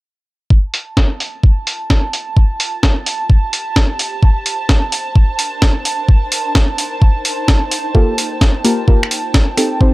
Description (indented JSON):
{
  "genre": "UK garage, two-step garage",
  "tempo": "129 BPM",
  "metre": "4/4",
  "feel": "swing 66% on 16ths",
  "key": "G minor",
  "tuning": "A4 = 441 Hz",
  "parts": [
    { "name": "airy breathy pad", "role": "sustained chords", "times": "0.9-9.9 s", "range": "A5", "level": "-23 LUFS", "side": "right 3 dB", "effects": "chorus, sidechain pumping" },
    { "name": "electronic kick drum", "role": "drums", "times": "0.5-9.9 s", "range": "none", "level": "-11 LUFS", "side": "equal", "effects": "overdrive" },
    { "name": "granular cloud pad", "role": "texture", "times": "2.6-9.9 s", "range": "D4 to A5", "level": "-29 LUFS", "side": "left 1 dB", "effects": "built-in reverb, sidechain pumping" },
    { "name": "breakbeat sampler-style drum kit", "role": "drums", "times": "0.7-9.7 s", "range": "finger snaps, hi-hat, snare drum", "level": "-17 LUFS", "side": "equal", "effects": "low-pass filter on hats, low-pass filter on snare, low-pass filter on room" },
    { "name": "deep mellow chord stab", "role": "stabs", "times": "7.9-9.9 s", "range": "Bb3 to C5", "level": "-16 LUFS", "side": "equal", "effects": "chorus" }
  ],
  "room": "little or no reverb",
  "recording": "dry, gritty hardware recording",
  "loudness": "-12 LUFS",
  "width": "side -20 dB against mid",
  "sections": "0.5-9.9 A section",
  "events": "fade-in on ambient pad 0.5-9.9",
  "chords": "0.5 Gm9"
}